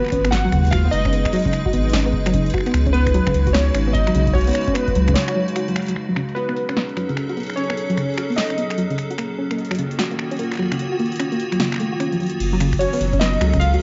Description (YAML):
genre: IDM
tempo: 149 BPM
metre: 4/4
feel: swing 62% on 16ths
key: F# melodic minor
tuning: A4 = 441 Hz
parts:
  - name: warbly lo-fi synth keys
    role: melody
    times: 0.0-8.9, 12.8-13.8 s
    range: B4 to F#5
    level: -27 LUFS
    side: equal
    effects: chorus, cassette tape, tape echo
  - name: icy glass pad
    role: sustained chords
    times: 0.0-13.8 s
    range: C#3 to B4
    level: -29 LUFS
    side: equal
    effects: chorus, built-in reverb, sidechain pumping
  - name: soft round pluck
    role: arpeggios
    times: 0.0-13.8 s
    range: C#3 to F#4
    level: -25 LUFS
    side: equal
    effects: chorus, analog delay
  - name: electro analog drum machine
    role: drums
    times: 0.0-13.8 s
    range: cabasa, crash cymbal, finger snaps, hi-hat, snare drum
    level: -29 LUFS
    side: equal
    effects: low-pass filter on hats, cassette tape, low-pass filter on snare, low-pass filter on cymbals, low-pass filter on perc
  - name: warm sub bass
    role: bass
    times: 0.1-5.2, 12.4-13.8 s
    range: F#1 to D#2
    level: -22 LUFS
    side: equal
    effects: tube saturation
  - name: electronic kick drum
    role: drums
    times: 0.1-5.2, 12.7-13.6 s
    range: none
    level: -27 LUFS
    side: equal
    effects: cassette tape
room: light reverb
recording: home recording on cassette, nothing above 7.6 kHz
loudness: -20 LUFS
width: mono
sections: 0.0-6.0 A section; 6.0-12.4 B section; 12.4-13.8 C section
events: break 5.2-6.0; drum fill 5.8; band accent 5.8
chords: 0.0 G#m7; 2.7 C#7sus4; 6.0 F#m6; 9.2 D#m7; 12.4 F#m6